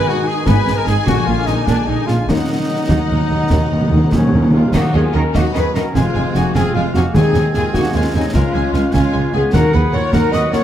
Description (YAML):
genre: cinematic, heroic adventure film score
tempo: 100 BPM (dotted quarters)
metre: 12/8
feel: straight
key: Eb minor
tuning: A4 = 439 Hz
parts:
  - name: warm symphonic violin section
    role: melody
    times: 0.0-10.6 s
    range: Eb5 to Ab5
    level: -27 LUFS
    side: left 5 dB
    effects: none
  - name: clear clarinet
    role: second line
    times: 0.0-10.6 s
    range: Gb3 to Cb5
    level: -29 LUFS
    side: left 2 dB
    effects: none
  - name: clear studio violin section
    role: second line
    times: 0.0-10.6 s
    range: Db4 to Eb5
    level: -30 LUFS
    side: left 2 dB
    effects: none
  - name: concert flute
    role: second line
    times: 0.0-10.6 s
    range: Db5 to Eb6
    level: -29 LUFS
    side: left 2 dB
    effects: none
  - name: warm cor anglais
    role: second line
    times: 0.0-10.6 s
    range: D4 to Ab5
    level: -29 LUFS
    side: right 2 dB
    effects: none
  - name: warm symphonic viola section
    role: accompaniment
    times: 0.0-10.6 s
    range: Gb3 to Cb5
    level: -27 LUFS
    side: equal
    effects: none
  - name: mellow French horn section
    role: sustained chords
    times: 0.0-10.6 s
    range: Db4 to Eb5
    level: -23 LUFS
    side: left 5 dB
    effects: none
  - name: warm trombone section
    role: sustained chords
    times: 0.0-10.6 s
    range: C3 to Ab3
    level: -27 LUFS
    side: right 4 dB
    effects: none
  - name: concert harp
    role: arpeggios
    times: 0.0-10.6 s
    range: Ab2 to Bb5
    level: -28 LUFS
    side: left 9 dB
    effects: none
  - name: dark trumpet section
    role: stabs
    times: 0.0-10.6 s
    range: Db4 to Eb5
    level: -27 LUFS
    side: right 1 dB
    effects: none
  - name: rich symphonic cello section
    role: bass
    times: 0.5-10.6 s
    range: Db2 to Eb3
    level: -20 LUFS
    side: right 2 dB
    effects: none
  - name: rich symphonic double bass section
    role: bass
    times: 0.5-10.6 s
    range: F1 to Eb2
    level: -20 LUFS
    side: right 2 dB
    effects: none
  - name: concert snare drum, concert bass drum and clash cymbals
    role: drums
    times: 0.5-10.6 s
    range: none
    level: -22 LUFS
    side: equal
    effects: none
  - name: timpani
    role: percussion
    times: 1.1-10.1 s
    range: Bb2 to Eb3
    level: -18 LUFS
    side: right 1 dB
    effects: none
room: moderate recital hall reverb, RT60 1.5 s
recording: close, detailed microphones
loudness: -13 LUFS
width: side -11 dB against mid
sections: 0.0-4.7 A section; 4.7-10.6 B section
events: timpani fill 2.3-4.7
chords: 0.0 Abm; 1.1 Bb7; 2.3 Ebm; 5.9 Fm; 7.1 Ab/Eb; 8.3 Db; 9.5 Ebm